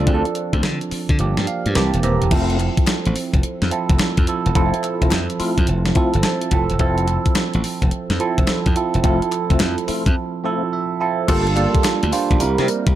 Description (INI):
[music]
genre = R&B, new jack swing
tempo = 107 BPM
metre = 4/4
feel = swing 65% on 16ths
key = unclear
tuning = A4 = 440 Hz
[part]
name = barky tine electric piano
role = accompaniment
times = 0.0-13.0 s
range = E3 to Bb5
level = -21 LUFS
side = right 5 dB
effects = phaser
[part]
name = percussive tonewheel organ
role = stabs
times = 0.0-12.7 s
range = A3 to Bb4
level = -27 LUFS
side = left 5 dB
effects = chorus vibrato, slow rotary speaker, ping-pong delay
[part]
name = glassy slap bass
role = bass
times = 0.0-12.9 s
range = Eb1 to D3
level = -20 LUFS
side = left 1 dB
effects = none
[part]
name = crisp 8-bit digital drum machine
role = drums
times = 0.1-13.0 s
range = crash cymbal, hi-hat, kick drum, snare drum, tambourine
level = -20 LUFS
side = left 1 dB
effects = none
[part]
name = group handclap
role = percussion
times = 2.6-12.0 s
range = none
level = -34 LUFS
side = left 10 dB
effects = none
[sound]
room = digital ambience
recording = dark, warm production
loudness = -16 LUFS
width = side -12 dB against mid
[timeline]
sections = 0.0-2.3 A section; 2.3-11.3 B section; 11.3-13.0 C section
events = kick muted 1.2-2.3; tine electric piano fill 1.2-2.3, 6.0-6.8, 10.4-11.3; break 10.2-11.3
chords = 0.1 Dm7; 1.2 Gm7; 1.8 C7; 2.3 Fmaj7; 11.3 Gm9; 12.4 C7